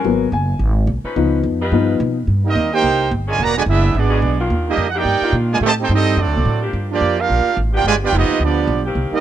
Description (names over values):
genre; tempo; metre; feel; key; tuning
jazz, big band swing; 216 BPM; 4/4; swing 59% on 8ths; C minor; A4 = 442 Hz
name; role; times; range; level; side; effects
warm upright piano; accompaniment; 0.0-2.2 s; F3 to Ab5; -18 LUFS; left 7 dB; none
clear saxophone section; sustained chords; 0.0-9.2 s; Eb3 to Cb5; -26 LUFS; left 2 dB; none
upright bass; bass; 0.0-9.1 s; E1 to B2; -18 LUFS; equal; none
bright trombone section; second line; 2.4-9.2 s; B2 to G4; -21 LUFS; right 7 dB; none
bright trumpet section; melody; 2.5-9.2 s; Bb3 to Bb5; -18 LUFS; right 4 dB; none
room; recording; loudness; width
small room ambience; dry, close 1970s-style studio recording; -15 LUFS; side -11 dB against mid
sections
0.0-2.3 A section; 2.3-9.2 B section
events
upright piano solo 0.0-2.3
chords
0.1 Abm9; 1.2 Db9; 1.7 G7b13; 2.3 Cm7; 3.4 E13; 4.5 Ebmaj7; 5.6 Am7b5; 6.2 D7; 6.7 Gm7; 7.8 G7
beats
| 0.05 0.33 0.61 0.89 | 1.17 1.45 1.73 2.00 | 2.28 2.56 2.84 3.12 | 3.40 3.68 3.95 4.23 | 4.51 4.79 5.07 5.35 | 5.62 5.90 6.18 6.46 | 6.74 7.01 7.29 7.57 | 7.85 8.12 8.40 8.68 | 8.96